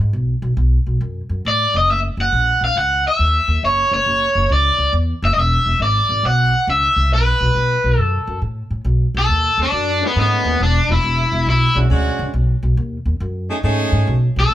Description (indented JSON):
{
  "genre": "electric blues shuffle",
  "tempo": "138 BPM",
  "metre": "4/4",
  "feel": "swing 67% on 8ths",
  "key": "unclear",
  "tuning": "A4 = 439 Hz",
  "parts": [
    { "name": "upright bass", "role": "bass", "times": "0.0-14.5 s", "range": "E1 to A2", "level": "-18 LUFS", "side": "equal", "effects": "none" },
    { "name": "raw garage guitar", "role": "melody", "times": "1.5-11.8, 14.4-14.5 s", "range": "B3 to F#5", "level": "-16 LUFS", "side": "equal", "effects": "overdrive" },
    { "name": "bright horn section", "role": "stabs", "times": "10.0-14.2 s", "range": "G#3 to G#4", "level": "-22 LUFS", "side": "right 2 dB", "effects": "none" }
  ],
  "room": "light reverb",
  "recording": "band playing live in one room",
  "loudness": "-15 LUFS",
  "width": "side -13 dB against mid",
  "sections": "0.0-8.9 A section; 8.9-14.5 B section",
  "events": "overdriven electric guitar solo 8.9-14.5",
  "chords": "0.0 B5; 1.9 F#6; 5.4 E13; 7.1 B5; 8.9 B13; 10.6 E13; 12.3 B13"
}